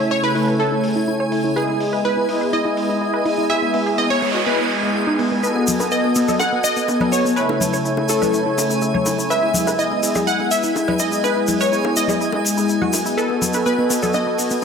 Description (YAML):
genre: progressive house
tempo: 124 BPM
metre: 4/4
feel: straight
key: E major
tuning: A4 = 436 Hz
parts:
  - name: plucky unison lead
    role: melody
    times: 0.0-14.6 s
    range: G#4 to F#5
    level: -22 LUFS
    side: equal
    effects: phaser, wide subtle chorus, tape echo
  - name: warm analog pad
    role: sustained chords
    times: 0.0-14.6 s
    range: C#3 to A4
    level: -25 LUFS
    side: right 2 dB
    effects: chorus
  - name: wide unison pluck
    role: arpeggios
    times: 0.0-14.6 s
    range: B3 to C#5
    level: -24 LUFS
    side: equal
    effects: cassette tape, tape echo
  - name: soft supersaw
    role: stabs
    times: 0.0-14.6 s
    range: G#3 to E5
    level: -23 LUFS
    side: left 2 dB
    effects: phaser, low-pass filter, tape echo
  - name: backwards swelling texture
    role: texture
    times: 0.0-14.6 s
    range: G#5 to G#6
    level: -29 LUFS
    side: right 2 dB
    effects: built-in reverb
  - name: electronic hi-hat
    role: drums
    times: 0.4-14.5 s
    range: none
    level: -38 LUFS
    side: right 4 dB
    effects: low-pass filter on hats
  - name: noise sweep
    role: sound effects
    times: 3.8-5.4 s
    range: none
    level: -26 LUFS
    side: right 3 dB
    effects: none
  - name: tube shaker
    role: percussion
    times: 5.4-14.6 s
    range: none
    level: -25 LUFS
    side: left 2 dB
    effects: none
  - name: bongos, congas and cowbell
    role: percussion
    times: 5.6-14.5 s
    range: none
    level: -27 LUFS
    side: left 4 dB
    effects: none
room: moderate lush hall reverb, RT60 1.9 s, digital ambience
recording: none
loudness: -16 LUFS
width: side -6 dB against mid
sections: 0.0-14.6 A section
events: filter sweep on analog synth pad 0.0-14.6; noise sweep 3.8-5.4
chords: 0.0 A; 1.6 Emaj7; 5.4 B7; 7.4 A; 9.3 Emaj7; 13.2 B7